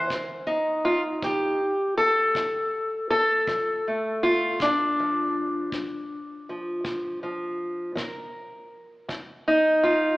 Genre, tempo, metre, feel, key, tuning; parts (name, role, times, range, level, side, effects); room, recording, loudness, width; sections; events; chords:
acoustic country blues, solo or duo; 53 BPM (dotted quarters); 12/8; straight; F mixolydian; A4 = 440 Hz
fingerpicked steel-string acoustic guitar; melody; 0.0-10.2 s; F2 to C5; -23 LUFS; equal
kick drum; drums; 0.1-9.3 s; -36 LUFS; equal
moderate concert hall reverb, RT60 2.3 s; recorded in a church or concert hall, AM radio sound; -22 LUFS; side -19 dB against mid
0.1-10.2 A section
0.1 F7; 4.6 Bb; 9.1 F7(no3)